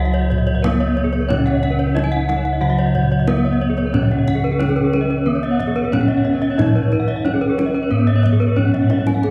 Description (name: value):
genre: Balinese gamelan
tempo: 91 BPM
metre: 4/4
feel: straight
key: Db slendro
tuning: A4 = 442 Hz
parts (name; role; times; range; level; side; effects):
- gamelan-type bronze metallophone; melody; 0.0-9.3 s; Cb4-45c to Ab4+25c; -23 LUFS; equal; none
- mellow xiao; second line; 0.0-8.0 s; Ab4+26c to Gb5-35c; -32 LUFS; equal; none
- gamelan-type bronze metallophone; accompaniment; 0.0-9.3 s; Db3 to Cb4-45c; -27 LUFS; equal; none
- gamelan-type bronze metallophone; arpeggios; 0.0-9.3 s; Ab4+25c to Ab5+25c; -30 LUFS; equal; none
- gamelan-type bossed gongs; bass; 0.0-9.3 s; Db2 to Ab4+25c; -23 LUFS; equal; none
- gamelan-type bronze metallophone; arpeggios; 0.1-9.2 s; Ab4+25c to Ab5+25c; -28 LUFS; equal; none
- kendang; percussion; 0.1-9.3 s; none; -25 LUFS; equal; none
room: wet concert hall reverb, RT60 2.1 s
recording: heard from further back in the room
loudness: -17 LUFS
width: mono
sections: 0.0-9.2 A section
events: drum fill 8.6-9.2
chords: none